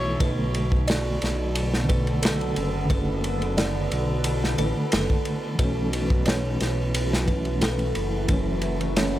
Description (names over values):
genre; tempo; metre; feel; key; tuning
trip hop; 89 BPM; 4/4; straight; B minor; A4 = 440 Hz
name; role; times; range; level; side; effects
mellow reed electric piano; accompaniment; 0.0-9.2 s; D3 to E4; -30 LUFS; equal; fast tremolo, tape echo
dark detuned saw bass; bass; 0.0-9.2 s; F#1 to B1; -26 LUFS; equal; none
deep dark ambient pad; sustained chords; 1.2-9.2 s; D3 to B4; -32 LUFS; equal; chorus, built-in reverb
music box; arpeggios; 0.2-9.2 s; A4 to D5; -33 LUFS; right 5 dB; tape echo
crunchy breakbeat drum kit; drums; 0.2-9.1 s; kick drum, ride cymbal, snare drum; -26 LUFS; equal; none
room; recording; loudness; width
small room reverb; none; -22 LUFS; side -14 dB against mid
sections
0.0-9.2 A section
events
none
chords
0.2 Bm7; 5.6 F#m7